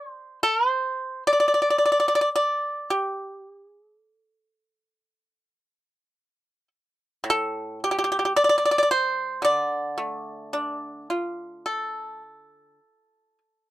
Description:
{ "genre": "chinese traditional, Chinese solo plucked strings", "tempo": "54 BPM", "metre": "4/4", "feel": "rubato", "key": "D yu mode", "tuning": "A4 = 439 Hz", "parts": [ { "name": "pipa", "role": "solo", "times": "0.0-13.7 s", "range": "A2 to D5", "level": "-22 LUFS", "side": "equal", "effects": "none" } ], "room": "light reverb", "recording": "dry, close 1970s-style studio recording", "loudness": "-21 LUFS", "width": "side -14 dB against mid", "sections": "0.0-13.7 A section", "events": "none", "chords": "none" }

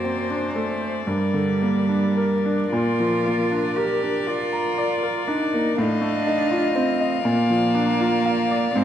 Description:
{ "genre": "classical, slow romantic movement for piano quartet", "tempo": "35-41 BPM (dotted quarters)", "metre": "6/8", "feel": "rubato", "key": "unclear", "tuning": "A4 = 441 Hz", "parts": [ { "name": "rich violin", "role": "melody", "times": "0.0-8.8 s", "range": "D5 to F5", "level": "-29 LUFS", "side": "left 6 dB", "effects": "none" }, { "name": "rich violin", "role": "second line", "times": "0.0-8.8 s", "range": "Bb4 to Eb5", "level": "-28 LUFS", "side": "left 4 dB", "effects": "none" }, { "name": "warm cello", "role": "second line", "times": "0.0-8.8 s", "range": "G3 to G4", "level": "-23 LUFS", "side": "right 4 dB", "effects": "none" }, { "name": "bright grand piano", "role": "accompaniment", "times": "0.0-8.8 s", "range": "F#2 to Bb5", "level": "-24 LUFS", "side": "left 1 dB", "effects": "none" } ], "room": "wet recital hall reverb, RT60 1.3 s", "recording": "vinyl crackle", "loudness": "-19 LUFS", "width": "side -10 dB against mid", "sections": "0.0-8.8 A section", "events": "none", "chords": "0.0 D7/F#; 1.1 Gm; 2.7 Bb; 5.8 F7/A; 7.3 Bb" }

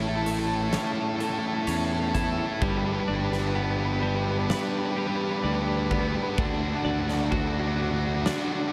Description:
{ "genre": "post-rock", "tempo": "64 BPM", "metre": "4/4", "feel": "straight", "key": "G lydian", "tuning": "A4 = 441 Hz", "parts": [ { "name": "pedal harmonium", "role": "sustained chords", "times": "0.0-8.7 s", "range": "E4 to B5", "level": "-39 LUFS", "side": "equal", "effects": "none" }, { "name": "twelve-string electric guitar", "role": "arpeggios", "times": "0.0-8.7 s", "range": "A2 to F#4", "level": "-33 LUFS", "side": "equal", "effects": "digital delay" }, { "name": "sludgy distorted guitar", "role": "riff", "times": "0.0-8.7 s", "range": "D4 to B4", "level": "-32 LUFS", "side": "equal", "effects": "overdrive" }, { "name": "fuzz fingered electric bass", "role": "bass", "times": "0.0-8.3 s", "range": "G1 to E2", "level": "-32 LUFS", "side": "equal", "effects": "overdrive" }, { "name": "huge arena drum kit", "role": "drums", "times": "0.3-8.5 s", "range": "hi-hat, kick drum, snare drum", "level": "-36 LUFS", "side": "equal", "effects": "none" } ], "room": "moderate lush hall reverb, RT60 2.8 s", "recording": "big arena sound", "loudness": "-27 LUFS", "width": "mono", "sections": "0.0-8.7 A section", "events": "build-up 0.0-8.7", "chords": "0.0 A; 2.6 Gadd9; 6.4 D" }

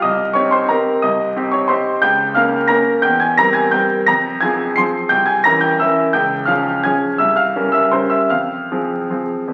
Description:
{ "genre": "classical, piano waltz", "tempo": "150-190 BPM", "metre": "3/4", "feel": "rubato", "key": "unclear", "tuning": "A4 = 440 Hz", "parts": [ { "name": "bright grand piano", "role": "solo", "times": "0.0-9.5 s", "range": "C2 to C7", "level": "-16 LUFS", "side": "equal", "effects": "none" } ], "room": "wet recital hall reverb, RT60 1.5 s", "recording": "very old 78 rpm record, vinyl crackle", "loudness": "-16 LUFS", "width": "mono", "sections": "0.0-9.5 A section", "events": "none", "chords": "0.0 Cm; 2.0 Bbm/Db; 3.0 C7/E; 4.1 Fm; 5.1 C7b9; 6.1 Db; 7.2 C7b9; 8.3 Fm" }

